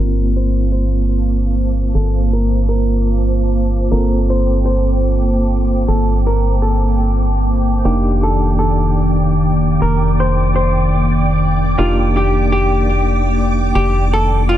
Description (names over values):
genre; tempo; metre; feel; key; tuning
house; 122 BPM; 4/4; swing 56% on 16ths; G minor; A4 = 438 Hz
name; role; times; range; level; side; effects
vintage hollow-body jazz guitar; melody; 0.0-14.6 s; F4 to C5; -22 LUFS; left 1 dB; digital delay
hollow soft pad; sustained chords; 0.2-14.6 s; Bb3 to A5; -23 LUFS; equal; ensemble chorus
overdriven tine electric piano; stabs; 0.0-14.6 s; Bb3 to Bb4; -24 LUFS; right 1 dB; fast tremolo, low-pass filter, digital delay
organ-like FM bass; bass; 0.0-14.6 s; F1 to G1; -16 LUFS; equal; none
string machine, violins; texture; 0.0-14.6 s; D6; -29 LUFS; right 1 dB; ensemble chorus
warbly tape-like pad; texture; 0.0-14.6 s; Eb3 to D6; -22 LUFS; right 1 dB; chorus, built-in reverb
room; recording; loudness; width
light reverb; dense, heavily limited modern master, low-pass filter; -13 LUFS; side -12 dB against mid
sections
0.0-14.6 A section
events
filter sweep on tine electric piano 0.0-14.6; filter sweep 0.0-14.6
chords
0.0 Gm11; 7.9 F13sus4